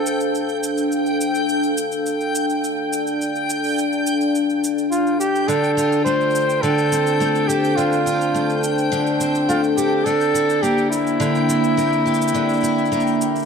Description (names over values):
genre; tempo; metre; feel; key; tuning
folktronica; 105 BPM; 4/4; straight; D minor; A4 = 440 Hz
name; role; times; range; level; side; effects
warm flugelhorn; melody; 0.0-0.6, 4.9-13.5 s; E4 to C5; -20 LUFS; right 1 dB; ping-pong delay
warbly tape-like pad; sustained chords; 0.0-13.5 s; Bb3 to A5; -22 LUFS; left 1 dB; chorus, built-in reverb
backwards swelling texture; texture; 0.0-13.5 s; G5; -27 LUFS; left 1 dB; built-in reverb
cabasa; drums; 0.1-13.5 s; none; -31 LUFS; right 3 dB; small room ambience
picked twelve-string acoustic guitar; arpeggios; 5.5-13.5 s; D3 to A4; -21 LUFS; left 1 dB; ping-pong delay
room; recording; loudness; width
light reverb; dark, warm production; -17 LUFS; side -6 dB against mid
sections
0.0-13.5 A section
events
none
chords
0.0 Dm7; 10.1 C7